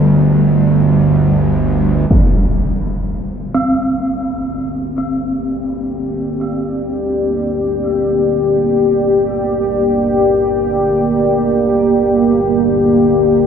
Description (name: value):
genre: dark ambient drone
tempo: free time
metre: none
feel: none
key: unclear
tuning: A4 = 443 Hz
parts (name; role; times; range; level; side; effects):
- gamelan-type bronze metallophone; arpeggios; 0.0-9.3 s; G3 to C4; -20 LUFS; equal; ping-pong delay
- bowed-like drone; drone; 0.0-13.5 s; G1 to D2; -18 LUFS; right 2 dB; built-in reverb
- deep dark ambient pad; sustained chords; 4.5-13.5 s; Bb3 to D5; -14 LUFS; left 1 dB; chorus, built-in reverb
- impact; percussion; 2.1-2.3 s; none; -16 LUFS; equal; low-pass filter on sfx
room: wet cathedral reverb, RT60 5.3 s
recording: dark, warm production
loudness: -12 LUFS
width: side -7 dB against mid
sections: 0.0-2.1 A section; 2.1-13.5 B section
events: fade-in on synth drone 2.1-13.5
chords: 0.0 G5; 2.1 Gm